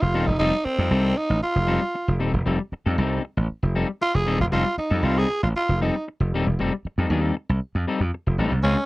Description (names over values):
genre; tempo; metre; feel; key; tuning
funk; 116 BPM; 4/4; straight; F mixolydian; A4 = 440 Hz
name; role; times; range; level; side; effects
growling tenor saxophone; melody; 0.0-8.9 s; C4 to Ab4; -24 LUFS; right 1 dB; none
clean electric guitar; accompaniment; 0.0-8.8 s; G3 to A4; -26 LUFS; left 4 dB; none
slap bass; bass; 0.0-8.7 s; Eb1 to F2; -22 LUFS; equal; none
room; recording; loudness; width
little or no reverb; dry, close 1970s-style studio recording; -21 LUFS; side -20 dB against mid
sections
0.0-8.6 A section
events
none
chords
0.0 F9